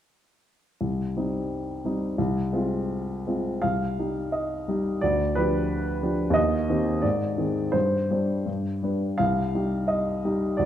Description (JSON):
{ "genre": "classical, romantic character piece for solo piano", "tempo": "79-90 BPM", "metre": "2/4", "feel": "rubato", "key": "C minor", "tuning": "A4 = 440 Hz", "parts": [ { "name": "warm upright piano", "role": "solo", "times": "0.8-10.7 s", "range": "C2 to F5", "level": "-23 LUFS", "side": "equal", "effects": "none" } ], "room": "moderate recital hall reverb, RT60 1.3 s", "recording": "dark, warm production", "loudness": "-24 LUFS", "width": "side -10 dB against mid", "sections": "0.8-3.6 A section; 3.6-10.7 B section", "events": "none", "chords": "0.8 Cm; 2.2 Fm/C; 3.6 Cm; 5.0 G7/D; 6.4 Cm/Eb; 7.0 Ab; 7.7 Gsus4; 8.5 G; 9.2 Cm", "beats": "| 0.80 1.50 | 2.18 2.88 | 3.62 4.32 | 5.01 5.69 | 6.36 7.04 | 7.74 8.47 | 9.19 9.89 | 10.58" }